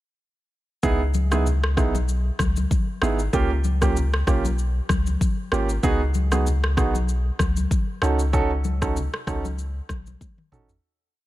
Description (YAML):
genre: afrobeats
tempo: 96 BPM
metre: 4/4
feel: swing 55% on 16ths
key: C# minor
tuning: A4 = 439 Hz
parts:
  - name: warm grand piano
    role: accompaniment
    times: 0.8-10.7 s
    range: A#3 to A4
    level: -26 LUFS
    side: right 4 dB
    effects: none
  - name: punchy sub bass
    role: bass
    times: 0.8-10.8 s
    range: G#1 to C#2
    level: -23 LUFS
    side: equal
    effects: none
  - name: afro-pop drum kit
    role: drums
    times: 0.8-10.8 s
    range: kick drum, rim click, shaker, toms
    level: -25 LUFS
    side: equal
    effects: vintage 12-bit sampler grit
  - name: congas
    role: percussion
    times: 0.8-10.4 s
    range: none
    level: -32 LUFS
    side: left 5 dB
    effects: none
room: little or no reverb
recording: none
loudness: -20 LUFS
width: side -16 dB against mid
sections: 0.8-10.8 verse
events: fade-out 8.3-10.8; drum fill 10.2-10.8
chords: 0.8 C#m7; 3.3 G#madd11 (rootless); 5.8 G#m7; 8.0 B7/C# (rootless)